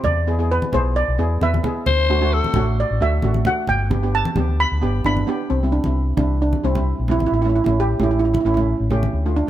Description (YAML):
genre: calypso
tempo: 132 BPM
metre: 4/4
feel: swing 54% on 16ths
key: C major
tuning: A4 = 444 Hz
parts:
  - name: steel pan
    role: melody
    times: 0.0-9.5 s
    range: B3 to B5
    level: -21 LUFS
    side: right 2 dB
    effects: none
  - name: steel pan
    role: accompaniment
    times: 0.0-9.5 s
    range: G3 to B4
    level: -25 LUFS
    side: right 2 dB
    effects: none
  - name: congas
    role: percussion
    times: 0.0-9.1 s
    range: none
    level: -26 LUFS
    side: equal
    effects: none
  - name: fingered electric bass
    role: bass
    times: 0.1-9.4 s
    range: G1 to E2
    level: -20 LUFS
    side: equal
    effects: none
  - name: raspy alto saxophone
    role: second line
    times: 1.9-2.7 s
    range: A4 to C5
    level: -22 LUFS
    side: left 6 dB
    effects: none
room: light reverb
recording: none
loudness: -17 LUFS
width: side -12 dB against mid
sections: 0.0-5.5 A section; 5.5-9.5 B section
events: steel pan solo 0.0-5.5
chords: 0.1 E7; 1.9 D7; 3.7 G; 5.5 C; 7.3 A7